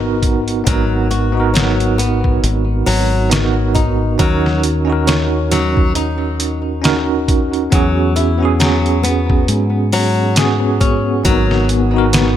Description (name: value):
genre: trip hop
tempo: 68 BPM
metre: 4/4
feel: swing 57% on 16ths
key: G# minor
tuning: A4 = 441 Hz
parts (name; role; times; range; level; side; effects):
- bell-like tine electric piano; accompaniment; 0.0-12.4 s; B3 to A#4; -17 LUFS; right 2 dB; medium stereo tremolo, tape echo
- flamenco guitar; arpeggios; 0.0-12.4 s; F#3 to F#4; -21 LUFS; left 3 dB; tape echo
- deep dub fingered electric bass; bass; 0.0-12.4 s; G#1 to G#2; -18 LUFS; equal; none
- trip hop sampler-style drum kit; drums; 0.2-12.4 s; hi-hat, kick drum, snare drum; -17 LUFS; equal; none
- string machine, cellos; sustained chords; 11.2-12.4 s; B3 to D#6; -22 LUFS; left 3 dB; ensemble chorus
room: light reverb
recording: none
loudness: -12 LUFS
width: side -10 dB against mid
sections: 0.0-12.4 A section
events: none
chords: 0.0 G#m7; 4.2 D#m7; 7.7 E69; 11.3 G#m7